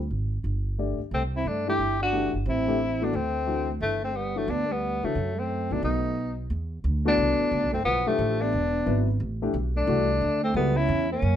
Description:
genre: jazz.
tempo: 178 BPM.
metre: 4/4.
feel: swing 65% on 8ths.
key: G major, E minor from 6.5 s.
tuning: A4 = 440 Hz.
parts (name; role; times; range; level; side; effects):
upright bass; bass; 0.0-11.4 s; E1 to C#3; -28 LUFS; right 1 dB; none.
warm concert grand piano; accompaniment; 0.8-10.8 s; E3 to D5; -30 LUFS; left 4 dB; none.
warm tenor saxophone; melody; 1.1-11.4 s; A3 to G4; -27 LUFS; left 3 dB; none.
breathy trombone; second line; 1.1-11.4 s; E3 to E4; -31 LUFS; right 6 dB; none.
room: light reverb.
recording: none.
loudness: -24 LUFS.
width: side -10 dB against mid.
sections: 0.0-6.5 A section; 6.5-11.4 B section.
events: none.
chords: 0.4 G5; 1.1 C69; 2.5 Am7; 3.1 D7; 3.8 G69; 5.2 F#dim; 5.8 B7; 6.5 E7(no3); 7.9 Bm7b5; 8.5 E7; 9.2 Am; 10.5 C#m7b5.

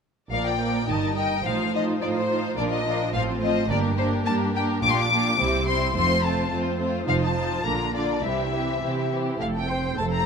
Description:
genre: quick classical-period movement for string orchestra.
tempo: 106 BPM.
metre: 2/4.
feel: straight.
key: Bb major, F major from 4.8 s.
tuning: A4 = 440 Hz.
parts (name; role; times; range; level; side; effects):
warm symphonic violin section; melody; 0.3-10.3 s; C5 to D6; -26 LUFS; left 5 dB; none.
warm symphonic violin section; second line; 0.3-10.3 s; E4 to Eb5; -30 LUFS; left 1 dB; none.
warm symphonic viola section; accompaniment; 0.3-10.3 s; D3 to C5; -28 LUFS; right 1 dB; none.
dark symphonic cello section; bass; 0.3-10.3 s; F2 to C3; -29 LUFS; right 3 dB; none.
rich symphonic double bass section; bass; 0.3-10.3 s; F1 to C2; -30 LUFS; right 4 dB; none.
room: moderate scoring stage reverb, RT60 2.1 s.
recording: none.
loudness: -22 LUFS.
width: side -6 dB against mid.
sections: 0.3-9.4 A section.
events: none.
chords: 0.3 Bb; 0.9 Eb/G; 1.5 F7/A; 2.6 Bb; 3.1 F/A; 3.7 Gm; 4.8 Gm7/Bb; 5.4 C; 6.0 F; 7.1 F7; 7.6 Bb; 8.2 C; 9.4 F.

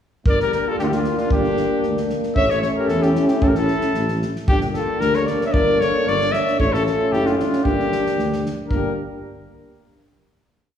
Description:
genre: balkan folk, Balkan brass band.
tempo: 114 BPM.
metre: 2/4.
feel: straight.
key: G dorian sharp4.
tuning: A4 = 440 Hz.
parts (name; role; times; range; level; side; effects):
clear cornet; melody; 0.3-8.9 s; F4 to E5; -22 LUFS; left 2 dB; none.
mellow alto saxophone; second line; 0.3-9.0 s; D4 to C#5; -26 LUFS; right 1 dB; none.
warm euphonium; accompaniment; 0.3-8.9 s; C#4 to D4; -25 LUFS; left 2 dB; none.
warm euphonium; accompaniment; 0.3-8.9 s; A3 to Bb3; -26 LUFS; right 2 dB; none.
dark tuba; bass; 0.3-8.9 s; F#1 to E2; -26 LUFS; equal; none.
unplugged drum kit; percussion; 0.3-8.9 s; kick drum, snare drum; -25 LUFS; equal; none.
room: wet recital hall reverb, RT60 1.8 s.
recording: heard from further back in the room, small room ambience.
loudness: -17 LUFS.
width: side -9 dB against mid.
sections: 0.3-8.7 A section; 8.7-9.8 final chord.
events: none.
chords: 0.3 Gm; 2.4 A; 4.5 Gm; 6.6 A; 7.6 Gm.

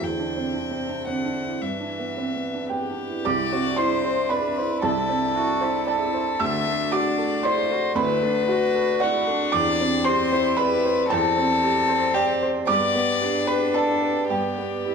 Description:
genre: neoclassical piano and strings.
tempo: 114 BPM.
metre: 3/4.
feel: rubato.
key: unclear.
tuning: A4 = 442 Hz.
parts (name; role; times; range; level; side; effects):
rich violin; melody; 0.0-14.9 s; F#4 to G5; -24 LUFS; left 4 dB; none.
warm cello; second line; 0.0-14.9 s; C3 to G4; -30 LUFS; right 3 dB; none.
felt-muted upright piano; accompaniment; 0.0-14.9 s; C2 to E6; -24 LUFS; right 3 dB; none.
hand-pumped harmonium; sustained chords; 0.0-14.9 s; B3 to D5; -31 LUFS; equal; none.
room: moderate large studio reverb, RT60 0.8 s.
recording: band playing live in one room.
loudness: -20 LUFS.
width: side -6 dB against mid.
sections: 0.0-3.2 A section; 3.2-14.9 B section.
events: none.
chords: 0.0 Cadd9/E; 1.6 G6; 3.2 Cadd9; 6.4 D; 9.5 Cadd9/E; 12.7 G.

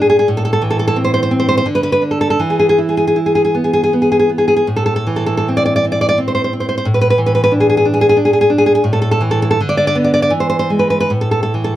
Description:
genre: romantic piece for solo classical guitar.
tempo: 70-94 BPM.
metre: 3/4.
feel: rubato.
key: A minor.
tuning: A4 = 439 Hz.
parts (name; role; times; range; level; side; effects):
nylon-string guitar; solo; 0.0-11.8 s; A2 to D5; -12 LUFS; equal; none.
room: light reverb.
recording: none.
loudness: -12 LUFS.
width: side -13 dB against mid.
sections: 0.0-11.8 A section.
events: none.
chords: 0.3 Am; 1.7 N.C.; 2.4 E5; 4.7 Am; 6.9 Asus24; 8.8 A5; 9.6 Bm/D; 10.3 E; 11.1 A5.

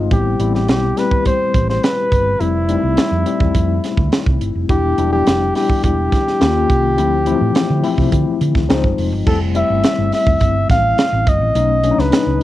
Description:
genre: polished 1980s jazz-funk pop.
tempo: 105 BPM.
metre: 4/4.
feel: straight.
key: unclear.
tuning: A4 = 440 Hz.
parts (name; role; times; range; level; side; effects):
tine electric piano; accompaniment; 0.0-12.4 s; Eb3 to F5; -19 LUFS; left 6 dB; medium tremolo, lush chorus, cassette tape.
hollow-body short-scale fingered electric bass; bass; 0.0-12.4 s; E1 to D3; -19 LUFS; right 1 dB; none.
warm flugelhorn; melody; 0.1-12.4 s; E4 to F5; -19 LUFS; equal; cassette tape.
crisp fusion drum kit; drums; 0.1-12.4 s; crash cymbal, hi-hat, kick drum, snare drum; -18 LUFS; right 1 dB; cassette tape.
room: light reverb.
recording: home recording on cassette.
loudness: -13 LUFS.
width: side -14 dB against mid.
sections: 0.0-9.3 A section; 9.3-12.4 B section.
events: none.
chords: 0.1 Am7; 2.4 Fmaj7; 4.7 Em7; 6.4 Eb5; 7.0 Dm7; 8.7 Dbmaj9; 9.3 Fmaj9; 11.6 B7.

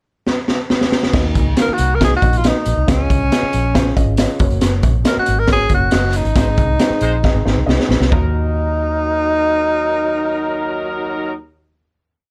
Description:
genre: uptempo 1960s-style soul.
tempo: 137 BPM.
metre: 4/4.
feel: straight.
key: Eb dorian.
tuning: A4 = 440 Hz.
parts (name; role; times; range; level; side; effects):
raw garage drum kit; drums; 0.3-8.2 s; crash cymbal, hi-hat, kick drum, snare drum; -18 LUFS; equal; none.
dark upright piano; accompaniment; 1.1-11.4 s; Eb2 to F5; -27 LUFS; equal; none.
vintage muted fingered electric bass; bass; 1.1-11.3 s; F1 to Eb2; -21 LUFS; equal; none.
warm tenor saxophone; melody; 1.6-11.3 s; Db4 to Bb4; -21 LUFS; equal; none.
mellow horn section; second line; 6.4-11.3 s; Gb3 to C5; -26 LUFS; equal; none.
room: little or no reverb.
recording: dark, warm production.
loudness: -16 LUFS.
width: mono.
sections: 0.0-1.1 pickup bar; 1.1-8.1 verse; 8.1-11.6 final chord.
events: drum fill 0.3-1.1, 7.2-8.1; band accent 6.4-8.1.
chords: 0.0 N.C.; 1.1 Ebm; 2.9 Dbadd9; 4.4 Gb; 6.4 Ab; 8.1 Ebm.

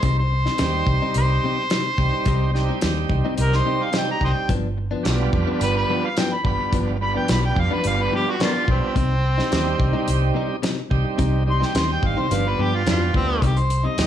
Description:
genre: straight-eighth soul blues.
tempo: 108 BPM.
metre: 4/4.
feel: straight.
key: C harmonic minor.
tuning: A4 = 440 Hz.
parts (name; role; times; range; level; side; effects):
overdriven harmonica; melody; 0.0-14.1 s; Bb3 to C6; -24 LUFS; left 1 dB; plate reverb.
bright tonewheel organ; accompaniment; 0.0-14.1 s; G3 to G4; -26 LUFS; right 7 dB; slow rotary speaker, overdrive, plate reverb.
direct-recorded clean electric guitar; stabs; 0.0-14.0 s; G2 to Eb4; -28 LUFS; left 6 dB; plate reverb.
vintage muted fingered electric bass; bass; 0.0-14.1 s; G1 to G2; -22 LUFS; equal; none.
warm soul drum kit; drums; 0.0-14.1 s; hi-hat, kick drum, snare drum; -24 LUFS; equal; none.
room: moderate club reverb, RT60 0.7 s.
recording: studio reverb.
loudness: -18 LUFS.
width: side -10 dB against mid.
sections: 0.0-13.4 A section.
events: harmonica solo 0.0-13.4.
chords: 0.0 Cm; 4.5 G7; 9.0 Cm; 12.3 G7; 13.4 Cm.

